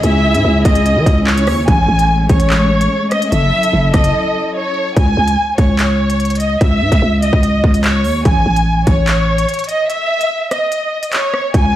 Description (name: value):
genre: hip hop, drill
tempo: 146 BPM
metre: 4/4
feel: half-time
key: unclear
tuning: A4 = 440 Hz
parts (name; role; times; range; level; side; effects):
- warm studio violin section; melody; 0.0-11.8 s; C#5 to G#5; -16 LUFS; equal; low-pass filter, tape echo
- dark studio string section; sustained chords; 0.0-5.0 s; C#3 to A4; -20 LUFS; left 1 dB; none
- growling 808-style bass; bass; 0.0-11.7 s; F#1 to E3; -14 LUFS; equal; none
- drill drum kit; drums; 0.0-11.6 s; handclaps, hi-hat, kick drum, rim click; -15 LUFS; equal; none
room: studio reverb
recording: played on a big sound system in a bare room, stone room reverb, vinyl crackle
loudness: -11 LUFS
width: side -13 dB against mid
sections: 0.0-5.0 A section; 5.0-11.8 B section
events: break 4.1-5.0, 9.9-11.5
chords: 0.0 C#m; 1.7 Amaj7; 3.3 F#m7; 5.0 N.C.; 8.3 Amaj7; 9.9 N.C.